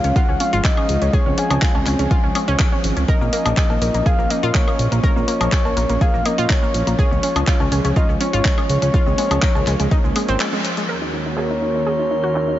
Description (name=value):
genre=progressive house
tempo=123 BPM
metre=4/4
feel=straight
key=Db major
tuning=A4 = 440 Hz
part: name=soft octave-layered synth lead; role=melody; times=0.0-12.6 s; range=Db5 to Ab5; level=-23 LUFS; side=left 1 dB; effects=chorus, vintage 12-bit sampler grit, analog delay
part: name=warm analog pad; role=sustained chords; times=0.0-12.6 s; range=Eb2 to Bb4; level=-25 LUFS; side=equal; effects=chorus, sidechain pumping
part: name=analog pluck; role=arpeggios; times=0.0-12.6 s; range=Ab3 to Bb4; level=-24 LUFS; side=equal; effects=chorus, sidechain pumping, analog delay
part: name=fat analog bass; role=bass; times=0.0-10.4 s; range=Ab1 to Bb2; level=-21 LUFS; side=equal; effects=sidechain pumping
part: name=deep house drum kit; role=drums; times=0.0-12.5 s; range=cabasa, handclaps, hi-hat, woodblock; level=-26 LUFS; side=left 1 dB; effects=overdrive, low-pass filter on hats, low-pass filter on perc, low-pass filter on snare, low-pass filter on room
part: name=electronic kick drum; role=drums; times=0.2-10.0 s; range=none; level=-18 LUFS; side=equal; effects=overdrive
part: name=congas and cowbell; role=percussion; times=0.4-10.6 s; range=none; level=-33 LUFS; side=left 2 dB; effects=none
part: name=drifting glass-harmonics texture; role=texture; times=11.4-12.6 s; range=Bb4 to C6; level=-34 LUFS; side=left 2 dB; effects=chorus, built-in reverb, sidechain pumping
room=moderate huge ambient reverb, RT60 8.9 s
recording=dreamy mix soaked in reverb, nothing above 7.7 kHz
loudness=-16 LUFS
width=side -13 dB against mid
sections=0.0-10.9 A section; 10.9-12.6 B section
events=filter sweep on analog synth pad 0.0-10.9, 10.9-12.6; break 10.4-10.9; band accent 10.4; filter sweep on synth pluck 10.9-12.6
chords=0.0 Db; 3.1 Bbm; 7.0 Db; 10.9 Ebm